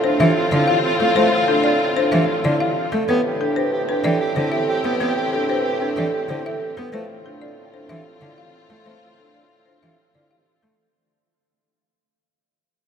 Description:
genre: classical, minimalist pattern music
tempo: 187 BPM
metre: 6/4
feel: straight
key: unclear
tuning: A4 = 440 Hz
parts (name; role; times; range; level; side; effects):
- folk marimba with hard mallets; melody; 0.0-10.8 s; A4 to F5; -24 LUFS; left 6 dB; none
- dark soprano saxophone; second line; 0.0-10.6 s; F4 to G4; -25 LUFS; right 3 dB; none
- rich chamber string section; sustained chords; 0.0-10.6 s; C4 to G4; -25 LUFS; left 3 dB; none
- vibraphone with soft mallets; arpeggios; 0.0-10.8 s; D4 to B4; -25 LUFS; right 4 dB; none
- mellow bassoon; bass; 0.0-10.7 s; A2; -28 LUFS; equal; none
- rich cello; accompaniment; 0.2-10.7 s; D3 to B3; -24 LUFS; right 1 dB; none
room: wet cathedral reverb, RT60 5.3 s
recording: in a vast, echoing space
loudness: -17 LUFS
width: side -7 dB against mid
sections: 0.0-10.8 A section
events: fade-out 0.0-10.8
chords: 0.0 Dm9/A; 3.1 Am9; 6.9 Dm9/A

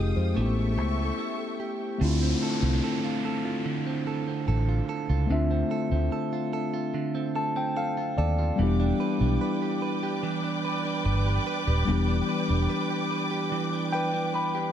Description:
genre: contemporary R&B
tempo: 73 BPM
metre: 4/4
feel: straight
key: unclear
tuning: A4 = 440 Hz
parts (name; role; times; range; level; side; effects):
- mellow tine electric piano; accompaniment; 0.0-14.7 s; E3 to B5; -29 LUFS; left 4 dB; dub echo
- dark symphonic string section; sustained chords; 0.0-2.0, 8.6-14.7 s; Ab3 to Eb6; -33 LUFS; left 1 dB; none
- direct-recorded clean electric guitar; arpeggios; 0.0-14.7 s; D3 to B4; -32 LUFS; right 8 dB; dub echo
- vintage muted fingered electric bass; bass; 0.0-12.7 s; D#1 to F2; -25 LUFS; equal; none
- downlifter; sound effects; 2.0-8.6 s; none; -38 LUFS; equal; none
room: light reverb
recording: echo-heavy mix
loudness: -24 LUFS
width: side -10 dB against mid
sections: 0.0-2.0 A section; 2.0-14.7 B section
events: break 1.2-2.0; tine electric piano fill 6.9-8.6, 13.9-14.7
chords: 0.4 A7; 2.0 Dm7; 8.6 Em7

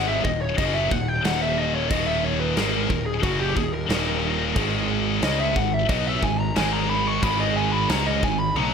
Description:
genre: heavy metal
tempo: 90 BPM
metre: 4/4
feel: straight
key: Eb phrygian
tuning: A4 = 440 Hz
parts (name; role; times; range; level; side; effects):
- high-gain lead guitar; melody; 0.0-8.7 s; Gb4 to Db6; -26 LUFS; equal; distortion
- distorted electric guitar; riff; 0.0-8.7 s; Eb2 to Db4; -29 LUFS; right 16 dB; distortion
- scooped high-gain guitar; riff; 0.0-8.7 s; Eb2 to Db4; -26 LUFS; left 11 dB; distortion
- fuzz picked electric bass; bass; 0.0-8.7 s; Eb1 to Db2; -27 LUFS; equal; overdrive
- big rock drum kit; drums; 0.2-8.7 s; crash cymbal, kick drum, snare drum, toms; -28 LUFS; equal; none
room: small room ambience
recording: none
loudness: -20 LUFS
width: side -6 dB against mid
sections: 0.0-8.7 A section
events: lead electric guitar solo 0.0-8.7; drum fill 8.6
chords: 0.0 Ebm; 4.6 Ab5

